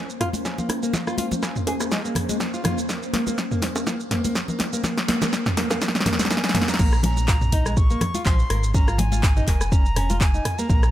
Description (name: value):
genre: afro house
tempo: 123 BPM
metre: 4/4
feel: swing 55% on 16ths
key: Bb minor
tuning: A4 = 440 Hz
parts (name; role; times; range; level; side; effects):
- ethereal airy pad; sustained chords; 0.0-6.8 s; Bb3 to C5; -31 LUFS; left 1 dB; ensemble chorus, built-in reverb, sidechain pumping
- nylon-string guitar; arpeggios; 0.0-10.8 s; F3 to Bb4; -29 LUFS; equal; sidechain pumping, low-pass filter, dub echo
- round analog bass; bass; 0.0-10.9 s; F1 to Db2; -24 LUFS; equal; sidechain pumping, high-pass filter
- deep house drum kit; drums; 0.1-10.9 s; crash cymbal, handclaps, hi-hat, rim click, shaker, snare drum, toms; -25 LUFS; equal; none
- congas; percussion; 0.3-10.8 s; none; -28 LUFS; left 2 dB; none
- electronic kick drum; drums; 0.5-10.8 s; none; -20 LUFS; equal; high-pass filter on kick, high-pass filter on room
- bongos; percussion; 0.7-6.7 s; none; -33 LUFS; right 3 dB; none
- bright reedy silver concert flute; melody; 6.3-10.9 s; Ab5 to Db6; -30 LUFS; equal; dub echo
room: light reverb, digital ambience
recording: none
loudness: -20 LUFS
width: side -13 dB against mid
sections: 0.0-6.8 A section; 6.8-10.9 B section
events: build-up 0.0-6.8; drum fill 0.0-6.8; filter sweep on ambient pad 0.0-6.8; drop 6.8-10.9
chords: 0.0 Bbmadd9; 6.8 Bbm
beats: 0.45 | 0.94 1.43 1.92 2.40 | 2.89 3.38 3.87 4.35 | 4.84 5.33 5.82 6.31 | 6.79 7.28 7.77 8.26 | 8.74 9.23 9.72 10.21 | 10.70